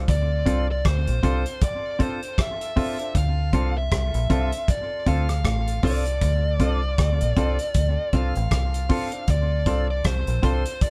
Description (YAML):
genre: roots reggae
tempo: 78 BPM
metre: 4/4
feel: swing 59% on 16ths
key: D minor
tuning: A4 = 440 Hz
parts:
  - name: warm upright piano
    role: stabs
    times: 0.0-10.6 s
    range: D4 to C5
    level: -38 LUFS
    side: equal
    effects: none
  - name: deep dub fingered electric bass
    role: bass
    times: 0.0-10.6 s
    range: A1 to D2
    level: -25 LUFS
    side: equal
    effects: none
  - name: fuzz lead guitar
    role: melody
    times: 0.1-10.9 s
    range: C5 to F5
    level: -31 LUFS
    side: equal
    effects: distortion
  - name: cloth-damped thuddy drum kit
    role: drums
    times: 0.1-10.9 s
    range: hi-hat, kick drum, rim click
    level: -28 LUFS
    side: equal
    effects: none
  - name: semi-hollow electric guitar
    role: accompaniment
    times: 0.5-10.6 s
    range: C4 to A4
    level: -32 LUFS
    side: equal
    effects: harmonic tremolo, dub echo
room: light reverb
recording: band playing live in one room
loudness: -23 LUFS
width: mono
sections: 0.0-10.9 A section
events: none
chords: 0.0 Dm7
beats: | 0.08 0.85 1.61 2.38 | 3.15 3.91 4.68 5.45 | 6.21 6.98 7.75 8.52 | 9.28 10.05 10.82